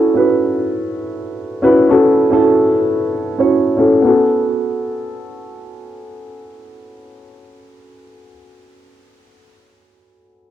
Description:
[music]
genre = chillout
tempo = free time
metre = none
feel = none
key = unclear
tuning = A4 = 438 Hz
[part]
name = dark grand piano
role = accompaniment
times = 0.0-10.5 s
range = B3 to C#5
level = -13 LUFS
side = moving between left 2 dB and right 4 dB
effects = auto-pan, cassette tape, analog delay
[sound]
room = wet small room reverb, RT60 0.5 s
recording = home recording on cassette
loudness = -12 LUFS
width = side -11 dB against mid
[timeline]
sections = 0.0-4.0 A section; 4.0-8.4 B section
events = none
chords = 0.0 F#m7; 4.0 F#madd11/B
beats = free time

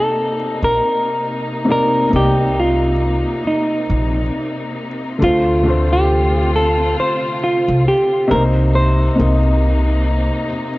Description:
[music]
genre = lo-fi hip hop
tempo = 68 BPM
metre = 4/4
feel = swing 58% on 16ths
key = C dorian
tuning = A4 = 440 Hz
[part]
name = semi-hollow electric guitar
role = melody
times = 0.0-9.6 s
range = Eb4 to C5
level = -17 LUFS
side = equal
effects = low-pass filter
[part]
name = felt-muted upright piano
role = accompaniment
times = 0.0-10.8 s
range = C3 to Eb5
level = -21 LUFS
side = left 1 dB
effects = low-pass filter
[part]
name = warm studio string section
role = sustained chords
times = 0.0-10.8 s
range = C3 to F4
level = -25 LUFS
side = left 1 dB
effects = low-pass filter
[part]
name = upright bass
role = bass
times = 0.6-10.3 s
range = Bb1 to D2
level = -17 LUFS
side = equal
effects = none
[sound]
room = light reverb, small room ambience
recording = vinyl crackle, nothing above 7.7 kHz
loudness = -14 LUFS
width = side -19 dB against mid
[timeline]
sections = 0.0-10.8 A section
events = none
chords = 0.0 Cm9; 5.2 Dm7; 8.3 Cm7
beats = 0.80 | 1.68 2.56 3.44 4.33 | 5.21 6.09 6.97 7.86 | 8.74 9.62 10.50

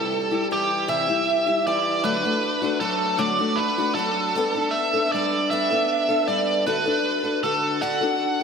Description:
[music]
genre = rock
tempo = 52 BPM (dotted quarters)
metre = 6/8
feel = straight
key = D major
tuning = A4 = 444 Hz
[part]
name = biting lead guitar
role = melody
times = 0.0-8.4 s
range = G4 to F#5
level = -22 LUFS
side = right 2 dB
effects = overdrive, ping-pong delay
[part]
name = picked steel-string acoustic guitar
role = accompaniment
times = 0.0-8.4 s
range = C3 to A4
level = -25 LUFS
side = left 3 dB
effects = none
[sound]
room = wet lush hall reverb, RT60 2.6 s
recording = dreamy mix soaked in reverb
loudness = -20 LUFS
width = side -6 dB against mid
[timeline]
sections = 0.0-8.4 A section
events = none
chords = 0.0 C (rootless); 2.0 D; 4.3 Gadd9; 6.7 D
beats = 0.89 | 2.04 3.19 | 4.35 5.50 | 6.65 7.81

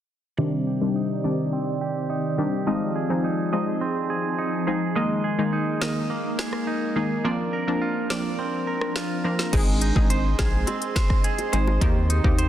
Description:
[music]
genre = dancehall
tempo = 105 BPM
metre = 4/4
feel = straight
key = unclear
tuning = A4 = 439 Hz
[part]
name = analog pluck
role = accompaniment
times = 0.4-12.5 s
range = Eb3 to Ab4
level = -26 LUFS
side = left 1 dB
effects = chorus, low-pass filter
[part]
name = glassy FM pad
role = sustained chords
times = 0.4-12.5 s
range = Eb3 to C6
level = -29 LUFS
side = equal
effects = ensemble chorus, built-in reverb, sidechain pumping, low-pass filter
[part]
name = direct-recorded clean electric guitar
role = arpeggios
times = 0.4-12.5 s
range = C3 to Eb5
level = -29 LUFS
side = right 4 dB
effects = low-pass filter
[part]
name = afro-pop drum kit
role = drums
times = 5.8-12.5 s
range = crash cymbal, hi-hat, kick drum, rim click, snare drum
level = -25 LUFS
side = equal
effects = none
[part]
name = round analog bass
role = bass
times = 9.5-12.5 s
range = Ab1 to Eb2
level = -23 LUFS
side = equal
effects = none
[part]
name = bongos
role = percussion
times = 9.5-11.9 s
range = none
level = -36 LUFS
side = left 6 dB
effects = none
[sound]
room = light reverb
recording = dense, heavily limited modern master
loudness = -22 LUFS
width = side -11 dB against mid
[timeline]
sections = 0.4-9.5 A section; 9.5-12.5 B section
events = filter sweep 0.4-9.5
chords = 0.4 Cmadd9; 2.7 Fm7; 5.0 Absus2; 7.2 Bbadd9; 9.5 Ab; 11.8 Eb6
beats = | 0.39 0.96 1.53 2.10 | 2.67 3.24 3.81 4.39 | 4.96 5.53 6.10 6.67 | 7.24 7.82 8.39 8.96 | 9.53 10.10 10.67 11.24 | 11.81 12.39

